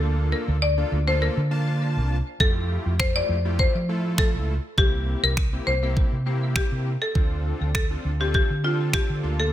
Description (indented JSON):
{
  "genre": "dance-pop",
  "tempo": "101 BPM",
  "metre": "4/4",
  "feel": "straight",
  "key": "unclear",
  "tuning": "A4 = 439 Hz",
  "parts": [
    { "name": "buzzing marimba with hard mallets", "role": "melody", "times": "0.0-9.5 s", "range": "F4 to D5", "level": "-26 LUFS", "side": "left 2 dB", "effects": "ping-pong delay" },
    { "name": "big bright polysynth", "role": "accompaniment", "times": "0.0-9.5 s", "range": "A3 to A5", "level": "-32 LUFS", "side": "equal", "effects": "sidechain pumping" },
    { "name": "fingered electric bass", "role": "bass", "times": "0.0-9.5 s", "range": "C2 to F3", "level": "-24 LUFS", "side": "equal", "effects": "sidechain pumping" },
    { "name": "pop drum kit", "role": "drums", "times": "2.4-9.1 s", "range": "finger snaps, kick drum", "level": "-22 LUFS", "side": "equal", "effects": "none" }
  ],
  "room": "digital ambience",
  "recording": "none",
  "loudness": "-21 LUFS",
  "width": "side -12 dB against mid",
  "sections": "0.0-9.5 A section",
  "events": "none",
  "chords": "0.0 Bbmaj7/D; 2.4 Fmaj9; 4.8 C7; 7.2 Dm7",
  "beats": "| 0.02 0.62 1.21 1.81 | 2.40 3.00 3.59 4.18 | 4.78 5.37 5.96 6.56 | 7.15 7.75 8.34 8.94"
}